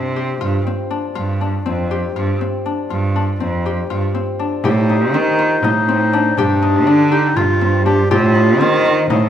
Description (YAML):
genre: contemporary instrumental, chamber music in an uneven meter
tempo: 242 BPM (eighths)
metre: 7/8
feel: straight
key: unclear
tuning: A4 = 440 Hz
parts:
  - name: Celtic harp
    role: arpeggios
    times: 0.0-9.3 s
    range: C4 to G4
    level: -20 LUFS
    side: left 4 dB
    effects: none
  - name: bright cello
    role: bass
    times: 0.0-9.3 s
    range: F2 to Eb3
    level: -17 LUFS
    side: right 2 dB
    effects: none
  - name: frame drum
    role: percussion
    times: 4.6-9.3 s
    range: none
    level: -23 LUFS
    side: left 2 dB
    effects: none
  - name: warm clarinet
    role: second line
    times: 4.7-9.0 s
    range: D4 to G4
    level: -17 LUFS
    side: equal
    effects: none
room: moderate recital hall reverb, RT60 1.4 s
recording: none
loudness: -14 LUFS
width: side -10 dB against mid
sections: 0.0-4.6 A section; 4.6-9.3 B section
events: none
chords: 0.0 Fsus2; 4.6 Am7b5; 6.4 G5; 8.1 Am7b5